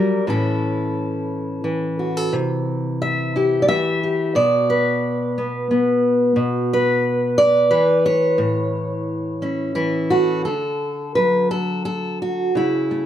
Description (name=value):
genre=folk, solo fingerstyle acoustic guitar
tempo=88 BPM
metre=3/4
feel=rubato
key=D major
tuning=A4 = 435 Hz
part: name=fingerpicked steel-string acoustic guitar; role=solo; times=0.0-13.1 s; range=A2 to E5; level=-17 LUFS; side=equal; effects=none
room=moderate large studio reverb, RT60 1.1 s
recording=none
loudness=-17 LUFS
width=side -10 dB against mid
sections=0.0-10.5 A section; 10.5-13.1 B section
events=none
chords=0.3 A; 2.3 C; 4.4 N.C.; 6.4 E5/B; 8.4 A; 10.5 D; 12.6 A/C#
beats=| 0.28 0.96 1.65 | 2.34 3.02 3.70 | 4.37 5.04 5.71 | 6.38 7.04 7.71 | 8.39 9.07 9.76 | 10.46 11.16 11.86 | 12.55